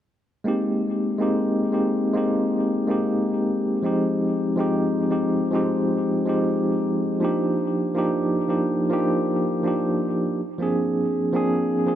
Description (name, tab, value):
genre	future bass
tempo	142 BPM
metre	4/4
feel	half-time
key	unclear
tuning	A4 = 440 Hz
part	tine electric piano	accompaniment	0.4-12.0 s	F3 to Ab4	-20 LUFS	equal	medium tremolo, ping-pong delay
room	moderate lush hall reverb, RT60 2.6 s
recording	none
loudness	-20 LUFS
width	side -11 dB against mid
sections	0.5-12.0 A section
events	none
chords	0.5 Abmaj7; 3.8 Fm7; 7.2 Ebmaj7; 10.4 Bb7